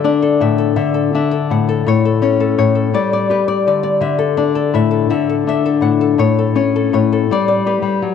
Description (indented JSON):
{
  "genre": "highlife",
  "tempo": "110 BPM (dotted quarters)",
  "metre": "12/8",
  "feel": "straight",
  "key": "D major",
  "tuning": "A4 = 439 Hz",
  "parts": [
    { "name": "nylon-string guitar", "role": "solo", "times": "0.0-8.1 s", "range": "A2 to F#5", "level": "-13 LUFS", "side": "left 5 dB", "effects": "tape echo" }
  ],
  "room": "wet echo chamber reverb, RT60 2.6 s",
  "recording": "none",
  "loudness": "-13 LUFS",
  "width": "side -7 dB against mid",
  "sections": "0.0-8.1 A section",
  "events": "none",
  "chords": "0.0 Dadd9; 1.9 A; 2.9 G; 4.0 Dadd9; 6.2 A; 7.3 G"
}